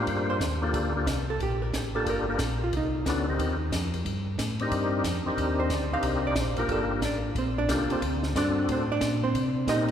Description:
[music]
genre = soul jazz organ trio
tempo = 181 BPM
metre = 4/4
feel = swing 63% on 8ths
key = G minor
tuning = A4 = 439 Hz
[part]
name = percussive tonewheel organ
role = melody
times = 0.0-9.9 s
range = Bb3 to C5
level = -30 LUFS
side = left 2 dB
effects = slow rotary speaker, overdrive, chorus vibrato
[part]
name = hollow-body jazz guitar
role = accompaniment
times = 0.0-9.9 s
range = C4 to F5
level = -30 LUFS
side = right 2 dB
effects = none
[part]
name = mellow tonewheel organ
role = bass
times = 0.0-9.9 s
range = G1 to C3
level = -30 LUFS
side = equal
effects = slow rotary speaker
[part]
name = compact cocktail drum kit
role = drums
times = 0.1-9.9 s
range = hi-hat, kick drum, ride cymbal, snare drum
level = -34 LUFS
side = equal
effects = none
[sound]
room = wet church reverb, RT60 3.5 s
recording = recorded in a church or concert hall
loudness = -25 LUFS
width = side -9 dB against mid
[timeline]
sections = 0.0-9.9 A section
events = hollow-body jazz guitar solo 0.0-9.9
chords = 0.1 Gm7; 2.7 Cm7; 6.7 Gm7; 8.0 D7; 9.3 Cm7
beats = | 0.08 0.41 0.75 1.08 | 1.41 1.74 2.07 2.40 | 2.73 3.07 3.40 3.73 | 4.06 4.39 4.72 5.05 | 5.38 5.71 6.04 6.38 | 6.71 7.04 7.37 7.70 | 8.03 8.36 8.69 9.02 | 9.35 9.68

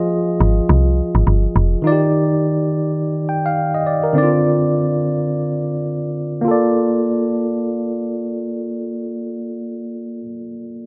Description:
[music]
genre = afrobeats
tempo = 104 BPM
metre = 4/4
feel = swing 58% on 16ths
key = Bb major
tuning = A4 = 440 Hz
[part]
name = tine electric piano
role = accompaniment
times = 0.0-10.9 s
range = D3 to G5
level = -20 LUFS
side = equal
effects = none
[part]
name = woody log drum bass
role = bass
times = 0.4-1.8 s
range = F1 to C2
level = -16 LUFS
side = equal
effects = none
[sound]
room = light reverb, digital ambience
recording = low-pass filter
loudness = -18 LUFS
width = mono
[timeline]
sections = 0.0-6.5 A section; 6.5-8.8 B section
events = filter sweep 0.0-6.5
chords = 0.0 Fm7; 1.8 Ebmaj7; 4.2 Dm7; 6.5 Bbmaj7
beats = 0.12 0.69 1.27 | 1.85 2.42 3.00 3.58 | 4.15 4.73 5.31 5.88 | 6.46 7.04 7.62 8.19

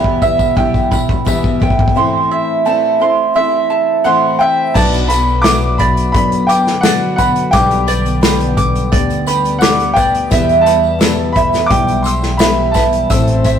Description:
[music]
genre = indie folk with a building arrangement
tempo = 86 BPM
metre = 4/4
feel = straight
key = E minor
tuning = A4 = 440 Hz
[part]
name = felt-muted upright piano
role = accompaniment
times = 0.0-13.6 s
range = A1 to E5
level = -23 LUFS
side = left 3 dB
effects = none
[part]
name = picked twelve-string acoustic guitar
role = accompaniment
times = 0.0-13.6 s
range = E2 to C5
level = -22 LUFS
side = left 5 dB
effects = none
[part]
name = mandolin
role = arpeggios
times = 0.0-13.6 s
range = D5 to E6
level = -15 LUFS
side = right 5 dB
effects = none
[part]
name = upright bass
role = bass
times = 0.0-13.6 s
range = A1 to F#2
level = -18 LUFS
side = left 1 dB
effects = none
[part]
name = loose indie drum kit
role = drums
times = 0.0-13.6 s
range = crash cymbal, hi-hat, kick drum, snare drum, toms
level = -16 LUFS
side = left 1 dB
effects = none
[part]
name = tambourine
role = percussion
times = 0.2-13.6 s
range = none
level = -32 LUFS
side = left 4 dB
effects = none
[part]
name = warm upright piano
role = melody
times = 4.0-13.6 s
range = F#5 to D6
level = -17 LUFS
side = left 2 dB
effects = none
[part]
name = hollow soft pad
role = sustained chords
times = 4.7-13.6 s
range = D3 to C4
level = -24 LUFS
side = left 1 dB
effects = ensemble chorus
[sound]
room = wet stone room reverb, RT60 1.2 s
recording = rough rehearsal-room recording, warm saturation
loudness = -11 LUFS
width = side -8 dB against mid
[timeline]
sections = 0.0-4.8 A section; 4.8-13.6 B section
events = build-up 0.0-4.8; drum fill 0.0-2.0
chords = 0.0 Em; 2.0 Am; 4.8 Bm; 7.5 G/B; 10.3 Em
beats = 0.57 1.27 | 1.97 2.67 3.36 4.06 | 4.75 5.45 6.14 6.84 | 7.53 8.23 8.93 9.62 | 10.32 11.01 11.71 12.40 | 13.10

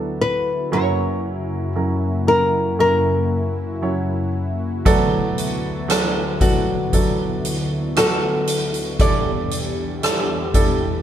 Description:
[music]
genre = pop ballad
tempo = 58 BPM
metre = 4/4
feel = straight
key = unclear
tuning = A4 = 441 Hz
[part]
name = nylon-string guitar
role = melody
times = 0.0-11.0 s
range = F#4 to D5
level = -21 LUFS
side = left 1 dB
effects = none
[part]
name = warm baby grand piano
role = accompaniment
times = 0.0-11.0 s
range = F#1 to C#5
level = -23 LUFS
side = right 3 dB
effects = none
[part]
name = warm analog pad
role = sustained chords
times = 0.0-11.0 s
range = D2 to G4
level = -24 LUFS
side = left 2 dB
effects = chorus
[part]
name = soft-mallet drum kit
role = drums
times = 4.9-10.8 s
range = hi-hat, kick drum, rim click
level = -21 LUFS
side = equal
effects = none
[sound]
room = wet stone room reverb, RT60 1.0 s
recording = band playing live in one room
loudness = -17 LUFS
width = side -10 dB against mid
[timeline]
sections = 0.0-11.0 A section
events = none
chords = 0.0 D6; 0.7 F#7; 4.9 D6; 9.0 A7sus4/E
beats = | 0.72 1.75 2.79 3.82 | 4.86 5.89 6.93 7.96 | 9.00 10.03

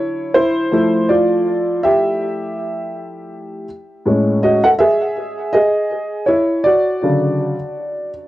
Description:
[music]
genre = hip hop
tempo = 81 BPM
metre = 4/4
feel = swing 58% on 16ths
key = unclear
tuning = A4 = 442 Hz
[part]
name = dark baby grand piano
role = solo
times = 0.0-8.1 s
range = A2 to F#5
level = -15 LUFS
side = equal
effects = cassette tape, tape echo
[sound]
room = moderate booth ambience, RT60 0.2 s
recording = home recording on cassette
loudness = -14 LUFS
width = side -15 dB against mid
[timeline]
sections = 0.0-8.3 A section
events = grand piano solo 0.0-8.3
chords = 0.0 Dmaj9; 0.7 Fmaj9; 3.7 Amaj7; 6.6 Dmaj7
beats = 0.35 | 1.09 1.83 2.57 3.31 | 4.05 4.80 5.54 6.28 | 7.02 7.76

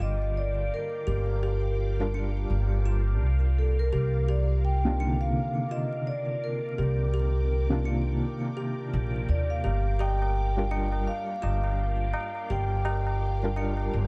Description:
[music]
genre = trip hop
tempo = 84 BPM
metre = 4/4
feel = swing 58% on 16ths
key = G minor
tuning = A4 = 439 Hz
[part]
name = vibraphone with soft mallets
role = melody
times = 0.0-13.9 s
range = A4 to G5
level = -36 LUFS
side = equal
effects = tape echo
[part]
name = felt-muted upright piano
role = accompaniment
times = 0.0-14.1 s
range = C3 to Bb4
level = -36 LUFS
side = equal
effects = tremolo, tape echo
[part]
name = string machine, cellos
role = sustained chords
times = 0.0-14.1 s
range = Bb4 to D6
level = -44 LUFS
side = equal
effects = phaser, ensemble chorus, vintage 12-bit sampler grit
[part]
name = music box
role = arpeggios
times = 0.0-13.9 s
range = D4 to G4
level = -42 LUFS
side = equal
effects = vintage 12-bit sampler grit, digital delay
[part]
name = upright bass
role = bass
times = 0.0-14.1 s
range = G1 to Eb2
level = -29 LUFS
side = equal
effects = none
[part]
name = tabla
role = percussion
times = 9.6-14.1 s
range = none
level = -41 LUFS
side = equal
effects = none
[sound]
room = small room ambience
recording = vinyl crackle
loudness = -28 LUFS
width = mono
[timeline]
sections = 0.0-14.1 A section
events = none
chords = 0.0 Gm7; 3.9 Cm11; 9.6 Gm7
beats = 0.36 | 1.07 1.79 2.50 3.22 | 3.93 4.64 5.36 6.07 | 6.79 7.50 8.22 8.93 | 9.64 10.36 11.07 11.79 | 12.50 13.22 13.93

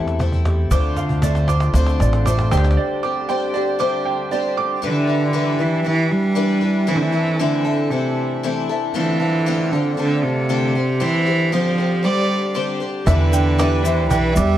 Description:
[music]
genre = indie folk with a building arrangement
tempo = 117 BPM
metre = 4/4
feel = straight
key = unclear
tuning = A4 = 437 Hz
[part]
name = fingerpicked steel-string acoustic guitar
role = accompaniment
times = 0.0-0.7 s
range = E2 to G4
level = -29 LUFS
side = left 1 dB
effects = none
[part]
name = picked twelve-string acoustic guitar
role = accompaniment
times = 0.0-14.6 s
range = D3 to C5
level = -24 LUFS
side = left 6 dB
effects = lush chorus
[part]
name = upright bass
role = bass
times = 0.0-2.8, 13.1-14.6 s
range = A1 to E2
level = -17 LUFS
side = equal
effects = none
[part]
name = cajon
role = drums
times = 0.1-2.8, 13.1-14.2 s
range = none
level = -26 LUFS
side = equal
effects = none
[part]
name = clear baby grand piano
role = accompaniment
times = 0.7-4.8, 13.1-14.6 s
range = D2 to E5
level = -30 LUFS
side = right 4 dB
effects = none
[part]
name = pedal harmonium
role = sustained chords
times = 0.7-14.6 s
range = D3 to F5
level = -28 LUFS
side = right 2 dB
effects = none
[part]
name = clear upright piano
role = arpeggios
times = 0.7-4.8, 13.1-14.6 s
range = D5 to D6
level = -24 LUFS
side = right 7 dB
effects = none
[part]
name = tube shaker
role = percussion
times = 0.7-2.6, 13.1-14.5 s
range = none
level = -36 LUFS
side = left 7 dB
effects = none
[part]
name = warm cello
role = melody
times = 4.8-14.6 s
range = C3 to G3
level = -19 LUFS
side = right 2 dB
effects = none
[part]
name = warm fiddle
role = second line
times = 12.0-14.6 s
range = B4 to E5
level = -24 LUFS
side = right 4 dB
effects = digital delay
[sound]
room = light reverb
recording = dark, warm production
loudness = -16 LUFS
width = side -12 dB against mid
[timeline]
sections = 0.0-4.8 A section; 4.8-14.6 B section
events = build-up 0.0-4.8; drum fill 0.0-2.8; break 2.8-4.8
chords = 0.0 Am/E; 0.7 Dm7; 2.5 Gsus4/D; 4.8 Em7; 6.9 Am; 8.9 Dm7; 10.7 Gsus4; 13.1 Em7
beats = 0.21 | 0.72 1.23 1.75 2.26 | 2.77 3.29 3.80 4.31 | 4.83 5.34 5.85 6.37 | 6.88 7.39 7.91 8.42 | 8.94 9.46 9.97 10.49 | 11.00 11.52 12.04 12.55 | 13.07 13.59 14.10

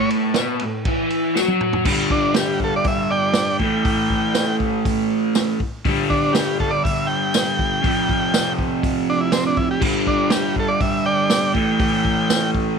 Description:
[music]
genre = garage rock duo or trio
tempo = 121 BPM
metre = 4/4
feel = straight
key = unclear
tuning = A4 = 440 Hz
[part]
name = overdriven combo organ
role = melody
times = 0.0-12.5 s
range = C4 to G5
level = -22 LUFS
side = right 2 dB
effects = none
[part]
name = raw garage guitar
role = riff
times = 0.0-12.8 s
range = F2 to F#4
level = -20 LUFS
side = equal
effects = overdrive, phaser
[part]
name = vintage drum kit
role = drums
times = 0.1-12.7 s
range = crash cymbal, hi-hat, kick drum, ride cymbal, snare drum, toms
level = -23 LUFS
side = right 2 dB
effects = none
[part]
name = tambourine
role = percussion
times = 0.4-12.4 s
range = none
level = -27 LUFS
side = left 18 dB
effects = none
[sound]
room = light reverb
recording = 1960s-style stereo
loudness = -17 LUFS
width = side -6 dB against mid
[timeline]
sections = 0.0-1.9 A section; 1.9-12.8 B section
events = drum fill 1.4-1.9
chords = 0.0 A5; 1.9 G5; 3.6 A5; 5.8 G5; 7.8 F5; 9.8 G5; 11.6 A5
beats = 0.37 0.87 1.37 | 1.87 2.37 2.86 3.36 | 3.86 4.36 4.85 5.35 | 5.85 6.35 6.84 7.34 | 7.84 8.34 8.83 9.33 | 9.83 10.32 10.82 11.31 | 11.81 12.30

